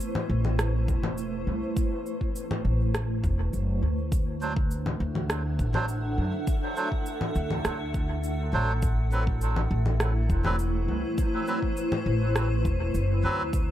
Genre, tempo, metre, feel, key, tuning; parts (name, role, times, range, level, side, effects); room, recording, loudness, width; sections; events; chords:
ambient dub; 102 BPM; 4/4; straight; A dorian; A4 = 444 Hz
granular cloud pad; sustained chords; 0.0-13.7 s; A3 to F#5; -32 LUFS; equal; built-in reverb
electronic shaker, congas and rim click; drums; 0.0-13.7 s; -32 LUFS; left 1 dB; dub echo
upright bass; bass; 0.3-13.7 s; E1 to F#2; -27 LUFS; equal
electronic kick drum; drums; 0.9-13.7 s; -28 LUFS; equal
melodica; stabs; 4.4-13.4 s; F#3 to C5; -33 LUFS; right 3 dB; dub echo
light reverb; -25 LUFS; side -12 dB against mid
0.0-13.7 A section
0.0 Amadd9; 4.1 D7; 8.8 Am69